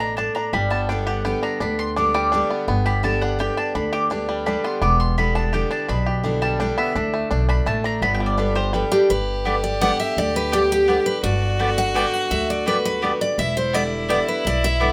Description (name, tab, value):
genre	bluegrass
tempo	168 BPM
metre	3/4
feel	straight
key	G major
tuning	A4 = 441 Hz
part	bluegrass banjo	melody	0.0-9.1 s	G3 to G4	-28 LUFS	equal	none
part	picked steel-string acoustic guitar	accompaniment	0.0-14.9 s	E2 to G4	-28 LUFS	equal	none
part	mandolin	stabs	0.0-14.9 s	B3 to D6	-26 LUFS	equal	none
part	upright bass	bass	0.0-14.9 s	E1 to D2	-28 LUFS	equal	none
part	picked steel-string acoustic guitar	melody	8.9-14.9 s	G4 to G5	-24 LUFS	equal	none
part	clear fiddle	second line	9.1-14.9 s	E4 to G4	-28 LUFS	equal	none
room	moderate studio reverb, RT60 0.5 s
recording	none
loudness	-21 LUFS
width	mono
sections	0.0-9.1 A section; 9.1-14.9 B section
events	mandolin solo 0.0-9.1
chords	0.0 D5; 0.5 G; 4.8 Em7; 7.0 D5; 8.0 G; 13.4 Em7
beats	0.17 | 0.53 0.89 1.25 | 1.61 1.96 2.32 | 2.68 3.04 3.39 | 3.75 4.11 4.46 | 4.82 5.18 5.54 | 5.89 6.25 6.60 | 6.96 7.32 7.67 | 8.03 8.39 8.74 | 9.10 9.46 9.81 | 10.17 10.53 10.88 | 11.24 11.60 11.96 | 12.31 12.67 13.03 | 13.38 13.74 14.10 | 14.45 14.81